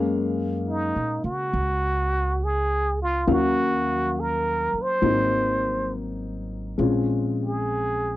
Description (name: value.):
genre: jazz ballad.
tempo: 69 BPM.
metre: 4/4.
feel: swing 68% on 8ths.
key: unclear.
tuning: A4 = 440 Hz.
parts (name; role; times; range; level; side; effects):
warm baby grand piano; accompaniment; 0.0-8.2 s; Gb3 to F5; -25 LUFS; left 3 dB; none.
upright bass; bass; 0.0-8.2 s; Ab1 to Db3; -28 LUFS; right 1 dB; none.
trumpet with plunger mute; melody; 0.7-8.2 s; Eb4 to C5; -24 LUFS; right 1 dB; none.
room: light reverb.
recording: dry, close 1970s-style studio recording.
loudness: -22 LUFS.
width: side -15 dB against mid.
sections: 0.0-6.8 A section; 6.8-8.2 B section.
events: muted trumpet solo 6.8-8.2.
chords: 0.0 Gbmaj9; 3.3 Ebm9; 5.0 Ab7; 6.8 Bbm7.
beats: 0.66 1.53 2.40 | 3.26 4.13 5.01 5.90 | 6.78 7.66.